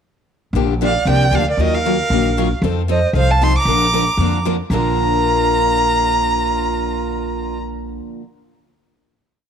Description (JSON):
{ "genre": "acoustic string swing (jazz manouche)", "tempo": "230 BPM", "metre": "4/4", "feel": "swing 57% on 8ths", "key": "Bb major", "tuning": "A4 = 441 Hz", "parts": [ { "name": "upright bass", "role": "bass", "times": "0.5-8.0 s", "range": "Bb1 to F2", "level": "-20 LUFS", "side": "equal", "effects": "none" }, { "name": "picked steel-string acoustic guitar", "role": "accompaniment", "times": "0.6-8.2 s", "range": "Bb2 to Bb4", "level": "-22 LUFS", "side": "left 13 dB", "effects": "none" }, { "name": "picked steel-string acoustic guitar", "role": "accompaniment", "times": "0.6-8.2 s", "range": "Bb2 to Bb4", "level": "-25 LUFS", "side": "right 12 dB", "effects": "none" }, { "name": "tenor recorder", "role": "second line", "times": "0.8-7.6 s", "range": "F4 to Bb5", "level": "-24 LUFS", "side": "right 9 dB", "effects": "none" }, { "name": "warm violin", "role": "melody", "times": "0.9-7.6 s", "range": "D5 to D6", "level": "-19 LUFS", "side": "right 1 dB", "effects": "none" } ], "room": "light reverb, small room ambience", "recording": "1960s-style stereo with parts hard left and right", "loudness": "-14 LUFS", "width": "side -7 dB against mid", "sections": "0.5-4.7 A section; 4.7-6.8 final chord", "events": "none", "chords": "0.5 Bb6; 1.6 Ebmadd9; 2.6 F7; 3.7 Bb" }